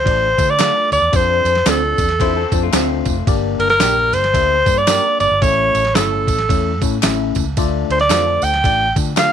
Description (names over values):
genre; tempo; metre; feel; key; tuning
uptempo 1960s-style soul; 112 BPM; 4/4; swing 60% on 8ths; D minor; A4 = 438 Hz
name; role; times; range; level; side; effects
bright alto saxophone; melody; 0.0-9.3 s; A4 to G5; -15 LUFS; right 1 dB; none
tine electric piano; accompaniment; 0.0-9.3 s; G2 to E5; -23 LUFS; left 13 dB; phaser
vintage muted fingered electric bass; bass; 0.0-9.3 s; F1 to D3; -22 LUFS; right 1 dB; none
boom bap sampler-style drum kit; drums; 0.1-9.3 s; kick drum, ride cymbal, snare drum; -21 LUFS; right 1 dB; none
tambourine and handclaps; percussion; 0.4-9.3 s; none; -26 LUFS; equal; none
electric guitar through a small old amp; stabs; 0.6-9.3 s; C4 to Bb4; -24 LUFS; right 14 dB; none
electric guitar through a small old amp; riff; 2.2-3.2 s; A3 to C5; -24 LUFS; left 13 dB; none
room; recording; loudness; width
light reverb; 1960s-style stereo with parts hard left and right; -13 LUFS; side -8 dB against mid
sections
0.0-9.3 A section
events
none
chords
0.0 Dm; 1.1 F6; 3.3 Gm; 5.4 A; 7.6 Dm